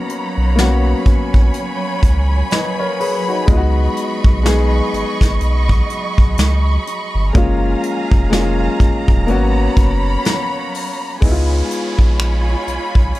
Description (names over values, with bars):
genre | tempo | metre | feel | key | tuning
contemporary R&B | 62 BPM | 4/4 | swing 58% on 16ths | unclear | A4 = 441 Hz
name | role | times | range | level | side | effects
clear concert grand piano | accompaniment | 0.0-13.2 s | G#3 to D#5 | -21 LUFS | left 2 dB | plate reverb
warm symphonic string section | sustained chords | 0.0-13.2 s | F#3 to C#6 | -23 LUFS | right 1 dB | plate reverb
soft brush drum kit | drums | 0.1-13.2 s | finger snaps, hi-hat, kick drum, snare drum | -14 LUFS | equal | none
saturated sub bass | bass | 0.4-13.1 s | D#1 to C#2 | -16 LUFS | equal | none
downlifter | sound effects | 11.2-13.2 s | none | -30 LUFS | right 1 dB | none
room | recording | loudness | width
little or no reverb | dark, warm production | -13 LUFS | side -17 dB against mid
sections
0.0-11.2 A section; 11.2-13.2 B section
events
none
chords
0.0 G#m11; 3.5 C#9sus4; 7.3 F#maj9; 9.3 G#m11; 11.2 C#7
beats
0.58 1.54 2.51 | 3.48 4.45 5.41 6.38 | 7.35 8.32 9.29 10.25 | 11.22 12.19 13.16